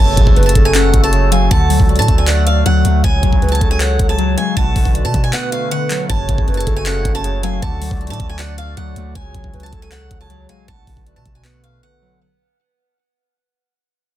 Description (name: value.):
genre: hip hop, trap.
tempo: 157 BPM.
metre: 4/4.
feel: half-time.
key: F# minor.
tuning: A4 = 440 Hz.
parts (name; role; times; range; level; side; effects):
picked swing-style acoustic guitar; melody; 0.0-12.2 s; E#5 to A5; -22 LUFS; right 2 dB; tape echo.
hollow clarinet-like synth lead; second line; 0.0-12.2 s; A4 to F#5; -24 LUFS; right 4 dB; chorus, tape echo.
warbly lo-fi synth keys; accompaniment; 0.0-12.2 s; F#2 to D5; -22 LUFS; left 5 dB; chorus.
hand-pumped harmonium; sustained chords; 0.0-12.2 s; C#3 to D5; -27 LUFS; left 3 dB; none.
long sustained 808-style bass; bass; 0.0-11.8 s; F#1 to B2; -17 LUFS; equal; none.
trap drum kit; drums; 0.2-11.7 s; handclaps, hi-hat, kick drum; -16 LUFS; equal; none.
room: little or no reverb.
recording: dense, heavily limited modern master, faint mains hum.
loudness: -12 LUFS.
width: side -13 dB against mid.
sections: 0.0-12.2 A section.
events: fade-out 0.0-12.2; break 5.3-6.1, 11.8-12.2.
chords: 0.0 F#m; 1.5 D; 3.0 C#sus4; 4.6 Bm7; 6.1 F#m; 7.6 D; 9.2 C#sus4; 10.7 Bm7.